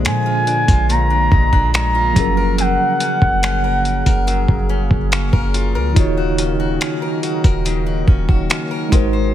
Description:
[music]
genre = contemporary R&B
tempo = 71 BPM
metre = 4/4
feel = straight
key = Eb dorian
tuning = A4 = 445 Hz
[part]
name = mellow tine electric piano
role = accompaniment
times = 0.0-9.3 s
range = Bb2 to Db5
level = -23 LUFS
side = equal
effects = medium stereo tremolo
[part]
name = chorused pulse-width pad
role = sustained chords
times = 0.0-9.3 s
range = C3 to Gb5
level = -25 LUFS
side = left 1 dB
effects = none
[part]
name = fingerpicked steel-string acoustic guitar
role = arpeggios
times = 0.0-9.3 s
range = Bb2 to C5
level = -26 LUFS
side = left 4 dB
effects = digital delay
[part]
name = clean 808-style bass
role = bass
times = 0.0-9.3 s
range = Eb1 to Bb2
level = -18 LUFS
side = equal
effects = none
[part]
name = dusty soul sampler-style drum kit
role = drums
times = 0.0-9.1 s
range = finger snaps, hi-hat, kick drum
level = -16 LUFS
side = equal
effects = none
[part]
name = gliding portamento lead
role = melody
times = 0.1-5.5 s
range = Gb5 to Bb5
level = -18 LUFS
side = equal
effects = chorus
[sound]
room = little or no reverb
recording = none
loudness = -14 LUFS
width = side -11 dB against mid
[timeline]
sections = 0.0-9.3 A section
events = none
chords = 0.0 Bb7; 2.2 Gbmaj7; 6.0 Ebm7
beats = 0.05 0.89 1.74 | 2.58 3.43 4.27 5.12 | 5.96 6.81 7.65 8.50

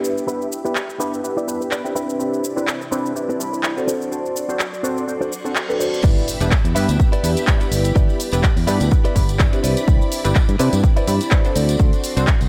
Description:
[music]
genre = filtered disco house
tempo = 125 BPM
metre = 4/4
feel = swing 55% on 16ths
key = G major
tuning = A4 = 440 Hz
[part]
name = funky polysynth comp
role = accompaniment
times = 0.0-12.3 s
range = G3 to B5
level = -26 LUFS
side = equal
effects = chorus, phaser, sidechain pumping, low-pass filter
[part]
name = string machine, full ensemble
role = sustained chords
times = 0.0-12.5 s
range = C4 to C6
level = -33 LUFS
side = equal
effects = ensemble chorus, sidechain pumping, low-pass filter
[part]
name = direct-recorded clean electric guitar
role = riff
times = 0.0-12.4 s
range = C4 to G5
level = -29 LUFS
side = equal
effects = sidechain pumping, low-pass filter
[part]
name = punchy analog drum machine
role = drums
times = 0.0-12.5 s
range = crash cymbal, handclaps, hi-hat, shaker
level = -28 LUFS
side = equal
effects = sidechain pumping on perc, sidechain pumping on cymbals, sidechain pumping on hats
[part]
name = reverse cymbal and impact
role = sound effects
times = 5.3-8.0 s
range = none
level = -34 LUFS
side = equal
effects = none
[part]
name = overdriven fingered electric bass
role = bass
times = 6.0-12.5 s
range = E1 to C3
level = -22 LUFS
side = equal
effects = tube saturation, sidechain pumping, low-pass filter
[part]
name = electronic kick drum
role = drums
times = 6.0-12.4 s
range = none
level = -18 LUFS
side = equal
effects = none
[part]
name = tambourine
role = percussion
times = 6.0-12.5 s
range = none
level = -40 LUFS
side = equal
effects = sidechain pumping on perc, low-pass filter on perc
[sound]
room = light reverb, digital ambience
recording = none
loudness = -19 LUFS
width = mono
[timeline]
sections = 0.0-6.0 A section; 6.0-12.5 B section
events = filter sweep 0.0-6.0; clean electric guitar fill 1.5-2.2; reverse cymbal 5.3-6.0; drop 6.0-12.5; impact 6.0-8.0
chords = 0.0 G6; 2.0 Cmaj9; 3.9 D7; 6.0 G6; 9.6 Cmaj9; 11.6 D7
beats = | 0.28 0.76 1.24 1.72 | 2.20 2.68 3.16 3.64 | 4.12 4.60 5.08 5.56 | 6.04 6.52 7.00 7.48 | 7.96 8.44 8.92 9.40 | 9.88 10.36 10.84 11.32 | 11.80 12.28

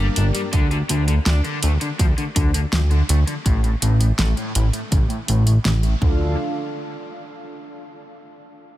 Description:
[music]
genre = synthwave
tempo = 82 BPM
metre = 4/4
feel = straight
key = D minor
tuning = A4 = 440 Hz
[part]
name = crunchy overdriven guitar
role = riff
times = 0.0-6.4 s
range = A2 to D4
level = -27 LUFS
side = left 2 dB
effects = wide subtle chorus, low-pass filter, tape echo
[part]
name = analog synth brass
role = stabs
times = 0.0-0.5 s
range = G2 to Bb4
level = -33 LUFS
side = left 2 dB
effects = chorus, analog delay
[part]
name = chorused synth bass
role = bass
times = 0.0-6.4 s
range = G1 to D2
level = -18 LUFS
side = equal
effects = sidechain pumping
[part]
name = pop drum kit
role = drums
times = 0.2-6.0 s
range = hi-hat, snare drum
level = -27 LUFS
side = right 1 dB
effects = none
[part]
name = electronic kick drum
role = drums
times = 0.5-6.2 s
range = none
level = -19 LUFS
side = equal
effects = none
[part]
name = chorused pulse-width pad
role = sustained chords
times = 6.0-6.4 s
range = D4 to F5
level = -29 LUFS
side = right 1 dB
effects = sidechain pumping
[sound]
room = little or no reverb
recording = none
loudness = -17 LUFS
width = side -14 dB against mid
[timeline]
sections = 0.0-6.4 A section; 6.4-8.8 B section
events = filter sweep on overdriven electric guitar 0.0-6.4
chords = 0.0 Gm; 0.5 N.C.; 6.0 Dm; 6.4 N.C.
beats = | 0.53 1.26 2.00 2.73 | 3.46 4.19 4.92 5.65

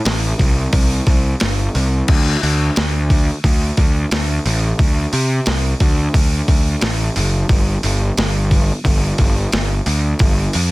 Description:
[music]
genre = hard rock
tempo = 89 BPM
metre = 4/4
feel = straight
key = unclear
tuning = A4 = 441 Hz
[part]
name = fuzz picked electric bass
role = bass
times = 0.1-10.7 s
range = F#1 to C3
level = -17 LUFS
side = equal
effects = overdrive
[part]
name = boom bap sampler-style drum kit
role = drums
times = 0.1-10.7 s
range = crash cymbal, hi-hat, kick drum, snare drum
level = -17 LUFS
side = equal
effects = overdrive
[sound]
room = little or no reverb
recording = dense, heavily limited modern master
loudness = -14 LUFS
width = side -20 dB against mid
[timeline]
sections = 0.0-10.7 A section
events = none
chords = none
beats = 0.06 0.73 1.41 | 2.08 2.76 3.44 4.11 | 4.79 5.46 6.14 6.82 | 7.49 8.17 8.85 9.53 | 10.20

